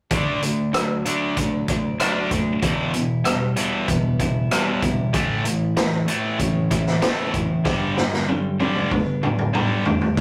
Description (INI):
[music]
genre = quiet-loud alternative rock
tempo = 95 BPM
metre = 4/4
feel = straight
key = G major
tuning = A4 = 439 Hz
[part]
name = twelve-string electric guitar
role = arpeggios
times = 0.1-10.2 s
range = G2 to E4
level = -30 LUFS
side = equal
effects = none
[part]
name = tight distorted guitar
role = riff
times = 0.1-10.1 s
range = E2 to D4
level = -25 LUFS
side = equal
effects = distortion
[part]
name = raw garage drum kit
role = drums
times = 0.1-10.2 s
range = crash cymbal, hi-hat, kick drum, rim click, snare drum, toms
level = -25 LUFS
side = equal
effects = none
[part]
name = growling picked electric bass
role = bass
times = 10.2 s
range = D2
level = -20 LUFS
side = equal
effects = overdrive
[sound]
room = moderate studio reverb, RT60 0.6 s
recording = rough rehearsal-room recording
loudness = -22 LUFS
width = mono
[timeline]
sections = 0.1-10.2 A section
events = drum fill 7.7-10.2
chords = 0.1 D; 2.6 Em; 5.1 A; 7.7 G